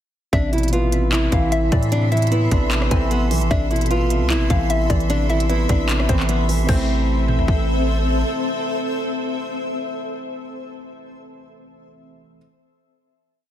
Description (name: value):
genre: hip hop, trap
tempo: 151 BPM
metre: 4/4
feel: half-time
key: A minor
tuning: A4 = 438 Hz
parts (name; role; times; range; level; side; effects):
- nylon-string guitar; melody; 0.3-7.8 s; B3 to F4; -25 LUFS; equal; digital delay
- hollow square pluck; second line; 0.3-7.8 s; C5 to G#5; -29 LUFS; left 3 dB; chorus, digital delay
- dark concert grand piano; accompaniment; 0.3-12.4 s; B2 to C4; -26 LUFS; right 3 dB; none
- granular cloud pad; sustained chords; 0.9-10.6 s; C4 to C6; -26 LUFS; left 1 dB; built-in reverb
- long sustained 808-style bass; bass; 0.3-8.2 s; A1 to A2; -20 LUFS; equal; none
- trap drum kit; drums; 0.3-7.6 s; crash cymbal, handclaps, hi-hat, kick drum, rim click, toms; -22 LUFS; equal; none
room: digital ambience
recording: dense, heavily limited modern master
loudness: -17 LUFS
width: side -11 dB against mid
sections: 0.3-6.7 hook; 6.7-9.9 final chord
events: none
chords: 0.3 Amadd9; 6.7 Am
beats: | 0.33 0.73 1.12 1.52 | 1.92 2.32 2.71 3.11 | 3.51 3.91 4.30 4.70 | 5.10 5.50 5.89 6.29 | 6.69 7.08 7.48 7.88 | 8.28 8.67 9.07 9.47